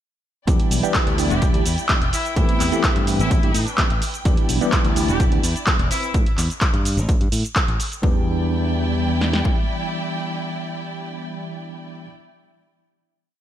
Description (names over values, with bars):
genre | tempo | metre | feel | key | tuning
filtered disco house | 127 BPM | 4/4 | straight | E minor | A4 = 440 Hz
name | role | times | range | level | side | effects
bell-like tine electric piano | accompaniment | 0.5-12.1 s | E3 to G4 | -25 LUFS | equal | fast stereo tremolo, phaser, vintage 12-bit sampler grit, sidechain pumping
rich studio violin section | sustained chords | 0.5-12.1 s | C4 to G5 | -31 LUFS | equal | sidechain pumping
modern bright fingered electric bass | bass | 0.5-9.4 s | E1 to A2 | -23 LUFS | equal | sidechain pumping
punchy analog drum machine | drums | 0.5-9.6 s | kick drum, snare drum | -20 LUFS | equal | studio reverb
punchy analog drum machine | drums | 0.5-8.0 s | handclaps, hi-hat, shaker | -24 LUFS | equal | sidechain pumping on hats, studio reverb, sidechain pumping on perc, gated reverb
bright horn section | melody | 1.3-6.1 s | E4 to G4 | -28 LUFS | left 1 dB | sidechain pumping, digital delay
room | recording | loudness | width
light reverb | bright 1980s-style digital production | -18 LUFS | side -11 dB against mid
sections
0.5-8.0 drop; 8.0-11.8 final chord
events
drop 0.5-8.0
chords
0.5 Em7; 2.1 Am9; 4.3 Em7; 5.9 Am9; 8.0 Em7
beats
| 0.47 0.95 1.42 1.89 | 2.36 2.84 3.31 3.78 | 4.25 4.73 5.20 5.67 | 6.14 6.62 7.09 7.56 | 8.03 8.51 8.98 9.45 | 9.92 10.40 10.87 11.34